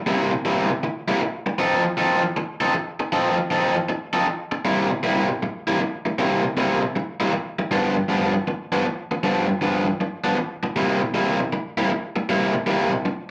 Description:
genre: blues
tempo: 157 BPM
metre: 4/4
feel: swing 65% on 8ths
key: C mixolydian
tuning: A4 = 440 Hz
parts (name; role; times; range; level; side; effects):
- raw garage guitar; solo; 0.1-13.1 s; G2 to A4; -23 LUFS; equal; overdrive, slapback echo
room: moderate club ambience, RT60 0.5 s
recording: live gig heard through the venue's PA, club reverb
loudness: -23 LUFS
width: mono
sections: 0.0-13.3 A section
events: none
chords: 0.0 C7; 1.6 F7; 4.7 C7; 7.7 G7; 10.8 C7

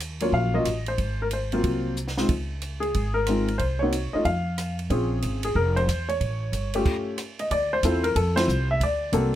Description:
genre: jazz piano trio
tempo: 184 BPM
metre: 4/4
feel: swing 64% on 8ths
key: unclear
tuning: A4 = 440 Hz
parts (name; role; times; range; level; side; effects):
- upright bass; bass; 0.0-9.4 s; F1 to F2; -27 LUFS; equal; none
- compact cocktail drum kit; drums; 0.0-9.2 s; crash cymbal, hi-hat, kick drum, ride cymbal, rim click, snare drum; -32 LUFS; right 2 dB; none
- warm upright piano; melody; 0.2-9.4 s; Gb3 to F5; -25 LUFS; left 1 dB; none
room: little or no reverb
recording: close, detailed microphones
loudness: -22 LUFS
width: side -12 dB against mid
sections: 0.0-7.5 A section; 7.5-9.4 B section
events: drum fill 2.0-2.3; band accent 8.3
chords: 0.0 Ebm9; 1.0 Ab13; 2.3 Db5; 3.6 Cm; 4.2 N.C.; 4.9 Bbm9; 6.2 Aaug7; 7.5 Dm9; 8.8 D7b13

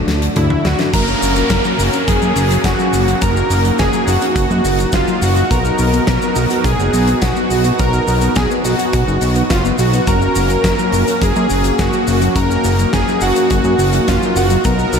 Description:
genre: synthwave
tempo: 105 BPM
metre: 4/4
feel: straight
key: F# major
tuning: A4 = 440 Hz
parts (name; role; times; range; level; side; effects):
- brassy analog pad; sustained chords; 0.0-15.0 s; A3 to F#4; -22 LUFS; right 1 dB; chorus, sidechain pumping
- mellow electric guitar; riff; 0.0-14.9 s; D3 to F#4; -24 LUFS; left 3 dB; analog chorus, ping-pong delay
- mellow synth brass; stabs; 0.0-15.0 s; F#3 to D5; -23 LUFS; left 1 dB; chorus, ping-pong delay
- fat analog bass; bass; 0.0-15.0 s; F#1 to F#2; -17 LUFS; equal; none
- huge arena drum kit; drums; 0.1-15.0 s; crash cymbal, hi-hat, shaker, snare drum, toms; -22 LUFS; left 1 dB; none
- soft supersaw; melody; 0.4-15.0 s; E4 to A#4; -18 LUFS; equal; ping-pong delay
- soft synth bell; second line; 0.9-15.0 s; E#5 to A#5; -26 LUFS; equal; chorus, ping-pong delay
- kick drum; drums; 0.9-14.8 s; none; -23 LUFS; equal; none
- downlifter; sound effects; 0.9-5.5 s; none; -26 LUFS; equal; none
room: moderate cathedral reverb, RT60 6.3 s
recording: dreamy mix soaked in reverb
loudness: -12 LUFS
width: side -6 dB against mid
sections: 0.9-15.0 A section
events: drum fill 0.1-0.9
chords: 0.0 D; 0.9 F#; 5.5 B; 10.1 F#

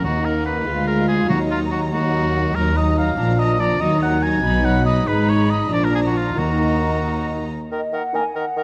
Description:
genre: quick classical-period movement for symphony orchestra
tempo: 95 BPM (dotted quarters)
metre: 6/8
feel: straight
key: Eb minor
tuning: A4 = 440 Hz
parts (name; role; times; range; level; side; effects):
- dark chamber violin section; melody; 0.0-7.5 s; F5 to B5; -36 LUFS; equal; none
- clear oboe; second line; 0.0-8.6 s; F4 to Ab5; -26 LUFS; equal; none
- warm chamber violin section; second line; 0.0-7.5 s; D4 to F4; -30 LUFS; equal; none
- dark chamber viola section; accompaniment; 0.0-7.5 s; Eb3 to A#3; -27 LUFS; equal; none
- dark French horn section; sustained chords; 0.0-8.2 s; F3 to F4; -28 LUFS; equal; none
- dark chamber double bass section; bass; 0.0-7.5 s; Ab1 to D#2; -26 LUFS; equal; none
- warm chamber cello section; bass; 0.0-7.5 s; D2 to Eb3; -28 LUFS; equal; none
- timpani; percussion; 0.0-1.9, 6.4-7.0 s; D#3; -30 LUFS; equal; none
- mellow large flute ensemble; second line; 7.7-8.6 s; Eb5 to Ab5; -26 LUFS; equal; none
- clear bassoon; accompaniment; 7.7-8.6 s; Eb3; -28 LUFS; equal; none
room: light reverb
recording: close, detailed microphones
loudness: -19 LUFS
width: mono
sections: 0.0-7.7 A section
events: none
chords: 0.0 D#m; 0.7 Ddim7; 1.3 D#m; 3.2 Bb; 3.8 Ebm; 4.4 B; 5.1 Abm; 5.7 Bb; 6.4 Ebm

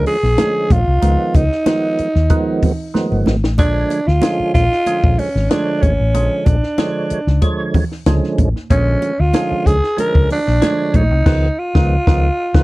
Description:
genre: funk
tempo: 94 BPM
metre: 4/4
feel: straight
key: Bb mixolydian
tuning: A4 = 444 Hz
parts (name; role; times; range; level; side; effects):
- growling tenor saxophone; melody; 0.0-12.6 s; C#4 to Bb4; -18 LUFS; right 1 dB; none
- percussive tonewheel organ; stabs; 0.0-12.6 s; D3 to C#5; -21 LUFS; right 3 dB; chorus vibrato, slow rotary speaker
- hollow-body short-scale fingered electric bass; bass; 0.0-12.6 s; G1 to Eb2; -16 LUFS; equal; none
- compact cocktail drum kit; drums; 0.1-12.6 s; crash cymbal, hi-hat, kick drum, snare drum; -16 LUFS; left 1 dB; none
- congas; percussion; 0.1-11.1 s; none; -24 LUFS; right 3 dB; none
room: little or no reverb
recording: dry, close 1970s-style studio recording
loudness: -13 LUFS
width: side -20 dB against mid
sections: 0.0-12.6 A section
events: drum fill 2.9-3.6; band accent 11.3-12.6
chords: 0.0 Bb7#9; 1.0 Db9 (rootless); 3.6 Bb7#9; 11.3 Db9

